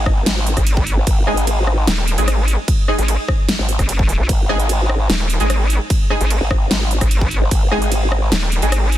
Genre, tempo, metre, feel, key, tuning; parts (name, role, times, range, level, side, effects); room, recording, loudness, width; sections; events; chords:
heavy wobble dubstep; 149 BPM; 4/4; half-time; A4 = 441 Hz
growl bass; bass; 0.0-8.3 s; G#1; -18 LUFS; equal; chorus, overdrive
big-room dance drum kit; drums; 0.1-9.0 s; hi-hat, ride cymbal, rim click, snare drum; -22 LUFS; equal; studio reverb
electronic kick drum; drums; 0.1-7.6 s; -17 LUFS; equal; studio reverb
vowel-sweep wobble bass; bass; 0.6-9.0 s; D#1 to A#1; -17 LUFS; equal; chorus, overdrive
orchestra-hit-like synth stab; stabs; 1.3-8.7 s; G#3 to G#4; -23 LUFS; right 1 dB; built-in reverb, digital delay
little or no reverb; dense, heavily limited modern master; -14 LUFS; side -13 dB against mid
0.0-9.0 A section
0.0 G#5